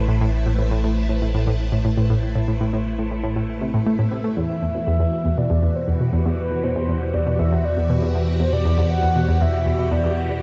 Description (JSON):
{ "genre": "ambient, sequencer-driven space music", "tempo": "119 BPM", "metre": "4/4", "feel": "straight", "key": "E minor", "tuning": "A4 = 442 Hz", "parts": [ { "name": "phased string machine", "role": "sustained chords", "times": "0.0-10.4 s", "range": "B2 to C5", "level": "-29 LUFS", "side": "equal", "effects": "ensemble chorus, phaser" }, { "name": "round analog bass", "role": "bass", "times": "0.0-10.4 s", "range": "A1 to E2", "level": "-27 LUFS", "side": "equal", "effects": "none" }, { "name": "analog pluck", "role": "riff", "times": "0.1-10.3 s", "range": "E2 to A3", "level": "-24 LUFS", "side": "equal", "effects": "chorus, analog delay" }, { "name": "mellow horn-like synth lead", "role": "melody", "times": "4.4-10.3 s", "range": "B4 to F#5", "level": "-28 LUFS", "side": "equal", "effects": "chorus, cassette tape, analog delay" } ], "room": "wet cathedral reverb, RT60 6.1 s", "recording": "in a vast, echoing space, nothing above 7.7 kHz", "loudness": "-21 LUFS", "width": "mono", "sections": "0.0-10.4 A section", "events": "none", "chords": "0.0 Am; 4.4 Em7", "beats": "| 0.34 0.84 1.34 1.85 | 2.35 2.86 3.36 3.87 | 4.37 4.87 5.38 5.88 | 6.39 6.89 7.39 7.90 | 8.40 8.91 9.41 9.91 | 10.42" }